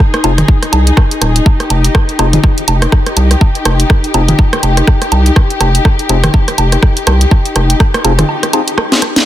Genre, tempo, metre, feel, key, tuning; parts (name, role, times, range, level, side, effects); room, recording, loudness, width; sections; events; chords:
minimal techno; 123 BPM; 4/4; swing 58% on 16ths; F minor; A4 = 440 Hz
electronic kick drum; drums; 0.0-7.9 s; -9 LUFS; equal
garage drum kit; drums; 0.0-9.2 s; hi-hat, rim click, snare drum; -16 LUFS; equal; soft clipping on snare
booming analog drum machine; percussion; 0.0-9.1 s; rim click, toms, woodblock; -17 LUFS; right 3 dB; soft clipping on snare, dub echo
dark symphonic string section; texture; 0.0-9.3 s; Eb4 to Ab4; -17 LUFS; left 3 dB; sidechain pumping
percussive organ stab; stabs; 0.2-9.0 s; C4 to Ab4; -19 LUFS; left 4 dB; chorus, dub echo
rubbery square bass; bass; 0.2-8.2 s; Eb1 to C2; -11 LUFS; equal; sidechain pumping
digital ambience; dense, heavily limited modern master; -8 LUFS; side -13 dB against mid
0.0-9.3 A section
drop 0.0-9.3; kick drops out 8.3-9.3; drum fill 8.9-9.3
0.0 Fm7